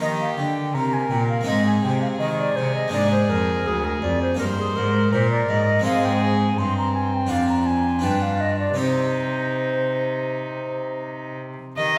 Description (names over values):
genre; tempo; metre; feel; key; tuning
classical, baroque-style sonata movement with continuo; 82 BPM; 4/4; straight; Eb major, C minor from 5.9 s; A4 = 440 Hz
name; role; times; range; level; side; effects
bright baroque flute; melody; 0.0-12.0 s; G4 to C6; -27 LUFS; equal; none
rich violin; second line; 0.0-12.0 s; C4 to Eb5; -30 LUFS; equal; none
harpsichord; accompaniment; 0.0-12.0 s; D2 to Eb5; -28 LUFS; equal; none
rich cello; bass; 0.0-12.0 s; D2 to Eb3; -28 LUFS; equal; none
room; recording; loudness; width
wet recital hall reverb, RT60 1.6 s; recorded in a church or concert hall; -22 LUFS; mono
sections
0.0-11.8 A section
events
none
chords
0.0 Eb; 1.5 Ab; 2.9 Bb7; 4.4 Eb/G; 5.9 Ab; 7.3 Ddim/F; 8.0 G7; 8.8 Cm